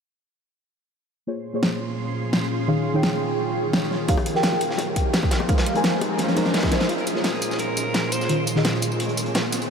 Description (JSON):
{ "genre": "liquid drum and bass", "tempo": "171 BPM", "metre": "4/4", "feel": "straight", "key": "Bb dorian", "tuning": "A4 = 439 Hz", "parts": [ { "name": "deep mellow chord stab", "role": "accompaniment", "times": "1.3-9.7 s", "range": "Eb3 to Bb5", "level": "-26 LUFS", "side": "equal", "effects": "chorus, phaser, analog delay" }, { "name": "glassy FM pad", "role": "sustained chords", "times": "1.6-9.7 s", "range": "Bb2 to C6", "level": "-27 LUFS", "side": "right 1 dB", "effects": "ensemble chorus, built-in reverb, sidechain pumping" }, { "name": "pop drum kit", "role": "drums", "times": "1.6-9.7 s", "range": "hi-hat, snare drum, tambourine", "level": "-26 LUFS", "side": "equal", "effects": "overdrive, high-pass filter on snare, high-pass filter on hats, high-pass filter on perc, high-pass filter on room" }, { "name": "crunchy breakbeat drum kit", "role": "drums", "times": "4.1-9.7 s", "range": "hi-hat, snare drum", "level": "-31 LUFS", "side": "equal", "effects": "high-pass filter on hats, high-pass filter on snare, high-pass filter on room" }, { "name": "electronic kick drum", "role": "drums", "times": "4.1-6.7 s", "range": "none", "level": "-22 LUFS", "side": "equal", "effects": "overdrive" }, { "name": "riser", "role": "sound effects", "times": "5.3-9.7 s", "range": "none", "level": "-31 LUFS", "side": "equal", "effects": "none" }, { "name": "bongos", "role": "percussion", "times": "4.2-6.7 s", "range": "none", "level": "-33 LUFS", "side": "left 4 dB", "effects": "none" }, { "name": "growling alto saxophone", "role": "melody", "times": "6.9-8.5 s", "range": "F4 to C5", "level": "-30 LUFS", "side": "right 1 dB", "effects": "tape echo" } ], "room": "wet huge ambient reverb, RT60 7.5 s", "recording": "dreamy mix soaked in reverb", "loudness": "-20 LUFS", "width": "side -6 dB against mid", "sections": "1.3-6.9 A section; 6.9-9.7 B section", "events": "filter sweep on synth stab 1.3-6.9, 6.9-9.7; riser 5.3-6.9; drum fill 6.2-6.9; build-up 6.9-9.7", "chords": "1.3 Bbm9; 2.7 Eb7sus4; 4.1 F9sus4; 5.5 Ab69; 6.9 Bbm9; 8.3 Eb7sus4" }